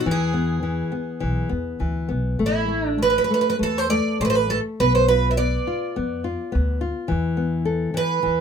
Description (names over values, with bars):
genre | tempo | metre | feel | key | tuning
fado-style ballad | 102 BPM | 4/4 | rubato | unclear | A4 = 440 Hz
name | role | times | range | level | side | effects
picked twelve-string acoustic guitar | melody | 0.0-8.4 s | E4 to E5 | -22 LUFS | right 4 dB | none
nylon-string guitar | accompaniment | 0.0-8.4 s | E3 to A4 | -24 LUFS | left 3 dB | none
upright bass | bass | 0.1-8.4 s | A1 to F2 | -26 LUFS | equal | none
room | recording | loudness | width
light reverb | minimal, uncompressed stereo recording | -20 LUFS | side -7 dB against mid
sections
0.0-8.4 A section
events
none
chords
0.1 E; 2.4 A5; 4.8 Bdim; 7.1 Esus4